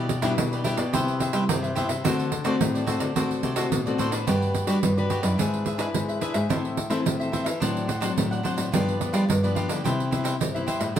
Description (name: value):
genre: samba and choro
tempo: 108 BPM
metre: 4/4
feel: straight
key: G major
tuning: A4 = 440 Hz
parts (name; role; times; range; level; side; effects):
- cavaquinho; accompaniment; 0.0-11.0 s; D4 to F#5; -30 LUFS; equal; none
- nylon-string guitar; accompaniment; 0.0-11.0 s; G2 to B4; -28 LUFS; left 4 dB; none
- nylon-string guitar; bass; 0.0-11.0 s; F#2 to A3; -27 LUFS; equal; none
- pandeiro; percussion; 0.1-11.0 s; none; -28 LUFS; right 4 dB; none
room: wet studio reverb, RT60 0.8 s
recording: band playing live in one room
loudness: -22 LUFS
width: side -10 dB against mid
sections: 0.0-4.3 A section; 4.3-11.0 B section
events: none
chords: 0.0 Em7/B; 0.9 Cmaj7; 2.0 D7; 4.3 Gmaj7; 5.4 E7/G#; 6.5 Am; 7.6 D7/A; 8.7 G7; 9.8 Cmaj7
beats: 0.38 0.94 1.49 | 2.05 2.60 3.16 3.72 | 4.27 4.83 5.39 5.94 | 6.50 7.06 7.62 8.17 | 8.73 9.29 9.85 10.40 | 10.96